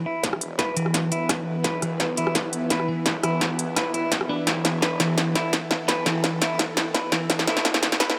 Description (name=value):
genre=half-time drum and bass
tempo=170 BPM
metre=4/4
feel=half-time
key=unclear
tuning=A4 = 441 Hz
part: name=bowed-like drone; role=sustained chords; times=0.0-8.2 s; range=E3 to B4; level=-32 LUFS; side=equal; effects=built-in reverb, phaser, sidechain pumping
part: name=clean electric guitar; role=arpeggios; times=0.0-8.2 s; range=E3 to B4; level=-30 LUFS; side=equal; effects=low-pass filter, delay
part: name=phased detuned saw bass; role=bass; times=0.2-8.2 s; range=D1 to G1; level=-38 LUFS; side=equal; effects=none
part: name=electronic kick drum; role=drums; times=0.2-8.1 s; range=none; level=-36 LUFS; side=equal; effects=none
part: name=industrial drum kit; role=drums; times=0.2-8.2 s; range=hi-hat, rim click, snare drum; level=-26 LUFS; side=equal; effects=studio reverb
room=moderate huge ambient reverb, RT60 6.4 s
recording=high-pass filter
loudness=-24 LUFS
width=mono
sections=0.0-8.2 A section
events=build-up 0.0-8.2; drum fill 0.0-8.2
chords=0.0 E5